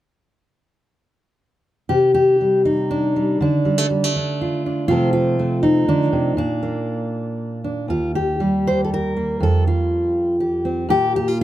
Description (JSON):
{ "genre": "folk, solo fingerstyle acoustic guitar", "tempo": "121 BPM", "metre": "3/4", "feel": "rubato", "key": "unclear", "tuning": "A4 = 436 Hz", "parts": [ { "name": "fingerpicked steel-string acoustic guitar", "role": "solo", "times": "1.9-11.4 s", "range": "Eb2 to C5", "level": "-17 LUFS", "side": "equal", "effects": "none" } ], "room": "little or no reverb", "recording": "close, detailed microphones", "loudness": "-17 LUFS", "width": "side -13 dB against mid", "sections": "1.9-11.4 A section", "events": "none", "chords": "1.9 Cmadd9; 3.4 Dm; 4.9 F/C; 6.4 Bb; 7.9 Eb; 9.4 Fsus2; 10.9 N.C.", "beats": "| 1.90 2.40 2.90 | 3.40 3.90 4.39 | 4.89 5.38 5.88 | 6.37 6.87 7.38 | 7.89 8.40 8.91 | 9.41 9.91 10.40 | 10.89 11.38" }